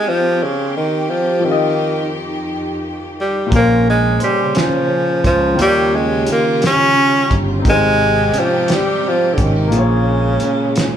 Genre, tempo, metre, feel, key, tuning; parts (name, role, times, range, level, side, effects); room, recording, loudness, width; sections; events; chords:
slow six-eight R&B; 58 BPM (dotted quarters); 6/8; straight; Bb dorian; A4 = 439 Hz
breathy tenor saxophone; melody; 0.0-11.0 s; Db3 to Db4; -15 LUFS; equal
warm baby grand piano; accompaniment; 0.0-11.0 s; Bb2 to Ab5; -23 LUFS; left 4 dB
clear studio string section; sustained chords; 0.0-11.0 s; F2 to G4; -24 LUFS; left 1 dB
electric guitar at the edge of break-up; second line; 3.5-11.0 s; Ab2 to C5; -22 LUFS; right 4 dB
sustaining fretless electric bass; bass; 3.5-10.4 s; G1 to Eb2; -18 LUFS; equal
cloth-damped thuddy drum kit; drums; 3.5-10.9 s; hi-hat, kick drum, snare drum; -19 LUFS; equal
wet large studio reverb, RT60 1.0 s; band playing live in one room; -13 LUFS; side -9 dB against mid
0.0-11.0 A section
0.0 Abmaj7; 1.4 Fsus2; 3.5 Bbm9; 5.6 Eb9; 7.7 Abmaj7; 9.7 Bbm9